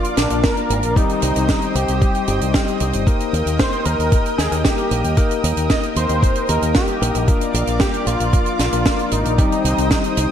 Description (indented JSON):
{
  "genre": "italo disco",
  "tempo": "114 BPM",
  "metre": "4/4",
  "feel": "straight",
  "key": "Eb major",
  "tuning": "A4 = 442 Hz",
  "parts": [
    { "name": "wide unison lead", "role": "melody", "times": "0.0-10.3 s", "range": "D4 to Eb5", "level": "-22 LUFS", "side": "equal", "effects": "digital delay" },
    { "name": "lush unison pad", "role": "sustained chords", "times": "0.0-10.3 s", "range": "Bb4 to Eb6", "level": "-25 LUFS", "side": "right 1 dB", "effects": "chorus" },
    { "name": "bell-like tine electric piano", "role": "stabs", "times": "0.0-10.3 s", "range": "G3 to Bb4", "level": "-24 LUFS", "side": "left 4 dB", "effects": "medium stereo tremolo" },
    { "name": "tight funk drum kit", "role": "drums", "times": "0.0-10.3 s", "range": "hi-hat, snare drum", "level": "-23 LUFS", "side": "right 2 dB", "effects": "none" },
    { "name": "fingered electric bass with an envelope filter", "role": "bass", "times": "0.2-10.3 s", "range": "G1 to Eb2", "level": "-21 LUFS", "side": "equal", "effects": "none" },
    { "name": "electronic kick drum", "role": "drums", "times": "0.4-10.0 s", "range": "none", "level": "-18 LUFS", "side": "equal", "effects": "none" }
  ],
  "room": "light reverb, small room ambience",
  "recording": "dark, warm production, lossy compression artefacts",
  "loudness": "-15 LUFS",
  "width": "side -9 dB against mid",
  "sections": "0.0-10.3 A section",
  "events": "none",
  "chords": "0.0 Bb; 1.0 Cm; 3.1 Eb; 7.3 Bb; 9.4 Cm",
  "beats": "0.44 | 0.96 1.49 2.02 2.54 | 3.07 3.60 4.12 4.65 | 5.17 5.70 6.23 6.75 | 7.28 7.80 8.33 8.86 | 9.38 9.91"
}